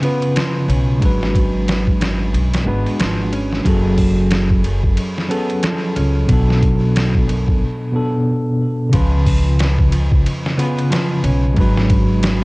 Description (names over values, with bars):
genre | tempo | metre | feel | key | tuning
trip hop | 91 BPM | 4/4 | swing 59% on 16ths | unclear | A4 = 440 Hz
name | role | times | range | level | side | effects
bell-like tine electric piano | accompaniment | 0.0-12.4 s | B2 to B4 | -20 LUFS | equal | fast stereo tremolo, harmonic tremolo, cassette tape
mellow electric guitar | arpeggios | 0.0-12.4 s | E#2 to C#4 | -22 LUFS | right 1 dB | cassette tape, tape echo
trip hop sampler-style drum kit | drums | 0.0-12.4 s | hi-hat, kick drum, ride cymbal, snare drum | -19 LUFS | equal | cassette tape
upright bass | bass | 0.7-12.4 s | F#1 to C#2 | -18 LUFS | equal | tube saturation
room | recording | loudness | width
light reverb | home recording on cassette | -14 LUFS | side -23 dB against mid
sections
0.0-8.9 A section; 8.9-12.4 B section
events
break 7.6-8.9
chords
0.0 C#7; 1.0 G#m7b5; 3.7 F#madd9; 6.3 Bm7; 8.9 C#7; 11.6 G#m7b5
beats
0.36 | 1.01 1.67 2.33 2.99 | 3.65 4.31 4.97 5.63 | 6.29 6.95 7.61 8.27 | 8.93 9.59 10.25 10.90 | 11.56 12.22